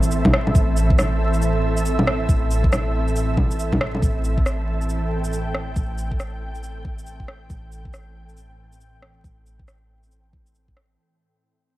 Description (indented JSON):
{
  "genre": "future garage",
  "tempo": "138 BPM",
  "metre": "4/4",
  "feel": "swing 62% on 16ths",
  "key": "A minor",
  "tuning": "A4 = 439 Hz",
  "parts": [
    { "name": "ethereal airy pad", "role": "sustained chords", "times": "0.0-11.0 s", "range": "A2 to G5", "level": "-26 LUFS", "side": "right 1 dB", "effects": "ensemble chorus, built-in reverb, vintage 12-bit sampler grit, sidechain pumping" },
    { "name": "soft 808-style bass", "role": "bass", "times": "0.0-11.0 s", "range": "A1", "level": "-24 LUFS", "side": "equal", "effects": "sidechain pumping" },
    { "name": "electronic shaker, bongos and rim click", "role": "drums", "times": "0.0-10.9 s", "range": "none", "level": "-22 LUFS", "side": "equal", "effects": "none" },
    { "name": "electronic kick drum", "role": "drums", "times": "0.2-10.7 s", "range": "none", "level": "-21 LUFS", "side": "equal", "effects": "none" }
  ],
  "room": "light reverb, digital ambience",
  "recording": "vinyl crackle",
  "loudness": "-18 LUFS",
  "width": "side -16 dB against mid",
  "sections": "0.0-11.0 A section",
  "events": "fade-out 0.0-11.0",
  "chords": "0.0 Am"
}